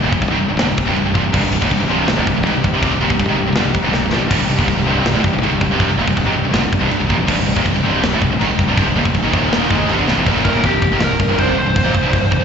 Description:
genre	heavy metal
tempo	161 BPM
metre	4/4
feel	straight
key	C minor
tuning	A4 = 439 Hz
part	rich studio string section	sustained chords	0.0-10.3 s	Bb2 to C5	-27 LUFS	left 1 dB	none
part	high-gain distorted guitar	riff	0.0-12.4 s	C2 to Ab3	-20 LUFS	right 10 dB	distortion
part	overdriven electric guitar	riff	0.0-12.4 s	C2 to Ab3	-22 LUFS	equal	none
part	scooped high-gain guitar	riff	0.0-12.4 s	C2 to Ab3	-21 LUFS	left 10 dB	distortion, slapback echo
part	fuzz fingered electric bass	bass	0.0-12.4 s	C1 to Bb1	-22 LUFS	equal	overdrive
part	tight metal drum kit	drums	0.1-12.4 s	china cymbal, crash cymbal, kick drum, snare drum, splash cymbal	-20 LUFS	equal	none
part	high-gain lead guitar	melody	10.4-12.4 s	G4 to C5	-19 LUFS	right 1 dB	distortion, slapback echo, ping-pong delay
room	studio reverb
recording	live gig heard through the venue's PA, recital hall reverb, nothing above 7.8 kHz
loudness	-13 LUFS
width	side -7 dB against mid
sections	0.0-10.3 A section; 10.3-12.4 B section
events	drum fill 3.9-4.3, 10.1; lead electric guitar solo 10.3-12.4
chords	0.0 Cm; 9.3 Eb5; 9.7 Cm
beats	0.22 0.59 0.96 | 1.33 1.71 2.08 2.45 | 2.82 3.19 3.57 3.94 | 4.31 4.68 5.05 5.43 | 5.80 6.17 6.54 6.91 | 7.29 7.66 8.03 8.40 | 8.77 9.15 9.52 9.89 | 10.27 10.64 11.01 11.39 | 11.76 12.13

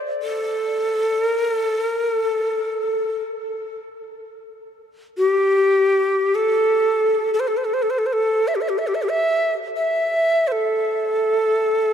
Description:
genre	world meditative, free-time meditation music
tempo	free time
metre	none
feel	none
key	A minor pentatonic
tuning	A4 = 438 Hz
part	breathy Native American-style cedar flute	solo	0.2-11.9 s	G4 to E5	-18 LUFS	equal	ping-pong delay
room	wet cathedral reverb, RT60 5.9 s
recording	dark, warm production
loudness	-18 LUFS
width	side -8 dB against mid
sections	0.0-11.9 A section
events	none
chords	none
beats	free time

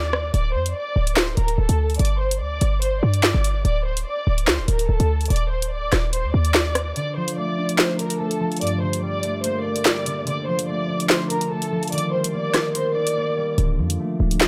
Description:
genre	hip hop, drill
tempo	145 BPM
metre	4/4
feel	half-time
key	D phrygian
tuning	A4 = 440 Hz
part	warm symphonic violin section	melody	0.0-13.5 s	A4 to D6	-29 LUFS	equal	low-pass filter
part	short 808-style bass	bass	0.0-6.9, 13.6-14.5 s	D1 to G2	-23 LUFS	equal	none
part	drill drum kit	drums	0.1-14.5 s	handclaps, hi-hat, rim click, snare drum	-24 LUFS	equal	none
part	concert harp	accompaniment	7.0-14.5 s	G2 to D5	-27 LUFS	equal	low-pass filter
room	small room ambience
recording	dry, gritty hardware recording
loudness	-22 LUFS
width	mono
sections	0.0-14.5 A section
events	break 0.0-0.3; kick muted 7.0-13.6; silent gap 13.2-13.6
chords	0.3 D5; 2.0 G5; 3.6 D5; 5.3 Cmadd9/D; 7.0 Dm; 8.6 Gmadd9; 10.3 Dm; 11.9 Eb; 13.6 Dm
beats	| 0.34 0.75 1.17 1.58 | 1.99 2.41 2.82 3.23 | 3.65 4.06 4.48 4.89 | 5.30 5.72 6.13 6.54 | 6.96 7.37 7.79 8.20 | 8.61 9.03 9.44 9.86 | 10.27 10.68 11.10 11.51 | 11.92 12.34 12.75 13.17 | 13.58 13.99 14.41

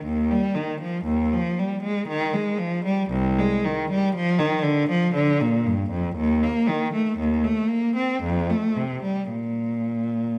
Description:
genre	classical, baroque-style suite movement for unaccompanied cello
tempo	58 BPM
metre	3/4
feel	rubato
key	unclear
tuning	A4 = 439 Hz
part	rich cello	solo	0.0-10.4 s	C2 to C4	-24 LUFS	equal	none
room	wet recital hall reverb, RT60 1.6 s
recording	none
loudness	-24 LUFS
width	mono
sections	0.0-10.4 A section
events	none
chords	none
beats	| 0.04 1.07 2.09 | 3.13 4.16 5.18 | 6.21 7.22 8.25 | 9.31

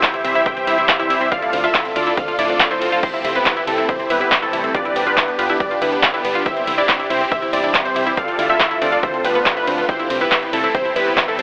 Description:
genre	uplifting trance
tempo	140 BPM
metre	4/4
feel	straight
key	C major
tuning	A4 = 440 Hz
part	supersaw chords	melody	0.0-11.4 s	A3 to G5	-20 LUFS	equal	sidechain pumping, digital delay
part	analog pluck	second line	0.0-11.4 s	A4 to G5	-22 LUFS	equal	chorus, sidechain pumping
part	analog pluck	arpeggios	0.0-11.4 s	B3 to G4	-23 LUFS	equal	chorus, sidechain pumping, digital delay
part	big-room dance drum kit	drums	0.0-11.4 s	crash cymbal, handclaps, hi-hat, ride cymbal	-20 LUFS	equal	none
part	electronic kick drum	drums	0.0-11.3 s	none	-22 LUFS	equal	none
part	solid FM bass	bass	0.2-11.4 s	D1 to D2	-34 LUFS	equal	sidechain pumping
room	light reverb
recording	telephone sound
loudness	-15 LUFS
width	side -34 dB against mid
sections	0.0-11.4 A section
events	none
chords	0.0 C; 1.3 Dm; 3.0 C; 4.7 G; 6.5 C; 8.2 Dm; 9.9 C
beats	0.03 0.46 0.89 | 1.32 1.75 2.17 2.60 | 3.03 3.46 3.89 4.32 | 4.75 5.17 5.60 6.03 | 6.46 6.89 7.32 7.75 | 8.17 8.60 9.03 9.46 | 9.89 10.32 10.75 11.17

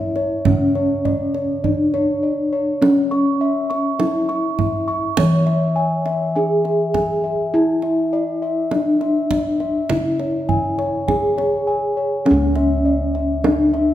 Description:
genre	Javanese gamelan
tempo	51 BPM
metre	4/4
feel	straight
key	unclear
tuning	A4 = 444 Hz
part	gamelan-type bronze metallophone	melody	0.0-13.9 s	C#4 to C#5	-20 LUFS	left 1 dB	none
part	gamelan-type bossed gongs	arpeggios	0.0-13.9 s	C#5 to C#6	-23 LUFS	left 2 dB	none
part	gamelan-type bossed gongs	bass	0.0-13.9 s	C#2 to E4-30c	-22 LUFS	equal	none
part	kendang	percussion	0.2-13.9 s	none	-24 LUFS	right 4 dB	none
room	wet recital hall reverb, RT60 1.8 s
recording	minimal, uncompressed stereo recording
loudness	-16 LUFS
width	side -12 dB against mid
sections	0.0-13.9 A section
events	none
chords	none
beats	0.46 1.64 | 2.82 4.00 5.18 6.36 | 7.54 8.72 9.90 11.08 | 12.26 13.44

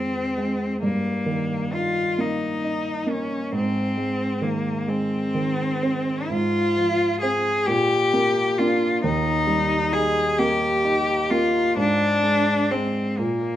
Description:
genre	classical, romantic duo for cello and grand piano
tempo	44 BPM (dotted quarters)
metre	6/8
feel	rubato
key	Ab major, Eb major from 6.3 s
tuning	A4 = 439 Hz
part	rich cello	melody	0.0-13.6 s	Bb3 to Ab4	-22 LUFS	left 2 dB	none
part	warm grand piano	accompaniment	0.0-13.6 s	Eb2 to Eb4	-24 LUFS	right 2 dB	none
room	moderate recital hall reverb, RT60 1.3 s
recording	minimal, uncompressed stereo recording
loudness	-20 LUFS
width	side -12 dB against mid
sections	0.0-13.6 A section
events	none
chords	0.0 Fm7; 0.8 Eb/G; 3.5 Ab; 6.3 Fm/Ab; 7.7 Bb; 9.0 Eb; 11.8 Ab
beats	| 0.83 2.19 | 3.53 4.88 | 6.30 7.67 | 9.03 10.38 | 11.77 13.18

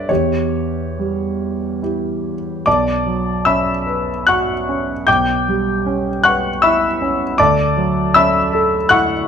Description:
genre	classical, impressionist solo piano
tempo	67-81 BPM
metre	3/4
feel	rubato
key	B minor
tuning	A4 = 438 Hz
part	warm concert grand piano	solo	0.0-9.3 s	B1 to G6	-14 LUFS	equal	none
room	moderate recital hall reverb, RT60 1.4 s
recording	close, detailed microphones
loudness	-14 LUFS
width	side -7 dB against mid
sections	0.0-2.7 A section; 2.7-9.3 B section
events	none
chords	0.1 Em6; 2.7 Bmadd9; 5.1 Em6/B; 7.4 Dmaj9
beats	| 0.09 0.98 1.82 | 2.66 3.46 4.26 | 5.07 5.85 6.63 | 7.38 8.15 8.91

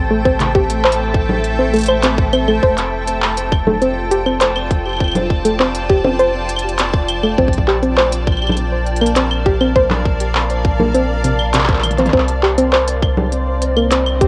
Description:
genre	IDM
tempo	101 BPM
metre	4/4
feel	straight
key	unclear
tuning	A4 = 438 Hz
part	granular cloud pad	sustained chords	0.0-14.3 s	A3 to A5	-26 LUFS	equal	built-in reverb
part	round analog bass	bass	0.0-14.3 s	F1 to C2	-23 LUFS	equal	tube saturation
part	bubbling stepped-filter texture	texture	0.0-14.3 s	C5 to A5	-28 LUFS	equal	chorus, built-in reverb
part	soft round pluck	arpeggios	0.1-14.3 s	C3 to C5	-19 LUFS	equal	chorus, cassette tape, tape echo
part	electronic kick drum	drums	0.3-14.3 s	none	-19 LUFS	equal	none
part	organic electronic drum kit	drums	0.4-14.3 s	claves, congas, handclaps, hi-hat, toms	-23 LUFS	equal	none
room	light reverb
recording	home recording on cassette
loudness	-16 LUFS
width	mono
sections	0.0-14.3 A section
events	drum fill 11.8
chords	0.0 Am7; 2.6 F6; 7.4 Bb; 12.1 Cmadd9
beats	| 0.25 0.85 1.44 2.03 | 2.63 3.22 3.82 4.41 | 5.00 5.60 6.19 6.79 | 7.38 7.97 8.57 9.16 | 9.76 10.35 10.95 11.54 | 12.13 12.73 13.32 13.91

